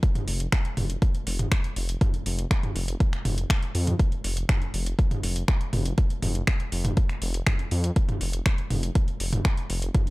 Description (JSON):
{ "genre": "melodic techno", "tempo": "121 BPM", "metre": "4/4", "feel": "straight", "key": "unclear", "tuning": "A4 = 440 Hz", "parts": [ { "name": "deep house drum kit", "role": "drums", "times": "0.0-10.1 s", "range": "finger snaps, hi-hat, toms", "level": "-29 LUFS", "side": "equal", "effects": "overdrive" }, { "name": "electronic kick drum", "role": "drums", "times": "0.0-10.0 s", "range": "none", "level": "-23 LUFS", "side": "equal", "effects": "overdrive" }, { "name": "dark detuned saw bass", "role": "bass", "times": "0.3-9.9 s", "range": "F1 to F2", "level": "-27 LUFS", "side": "equal", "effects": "sidechain pumping" } ], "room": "little or no reverb", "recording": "dry, gritty hardware recording", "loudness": "-23 LUFS", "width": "side -22 dB against mid", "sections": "0.0-10.1 A section", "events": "none", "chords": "none" }